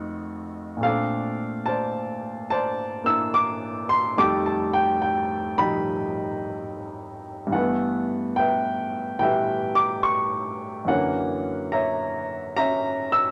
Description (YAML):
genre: solo jazz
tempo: 72 BPM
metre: 4/4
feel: swing 66% on 8ths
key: unclear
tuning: A4 = 437 Hz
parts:
  - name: warm upright piano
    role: solo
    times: 0.0-13.3 s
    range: F2 to E6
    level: -25 LUFS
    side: equal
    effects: none
room: moderate studio reverb, RT60 0.6 s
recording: none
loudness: -25 LUFS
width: mono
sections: 0.0-13.3 A section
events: none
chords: 0.0 F7b9; 0.8 Bbmaj9; 4.2 F9; 7.5 G69; 10.9 F#7b13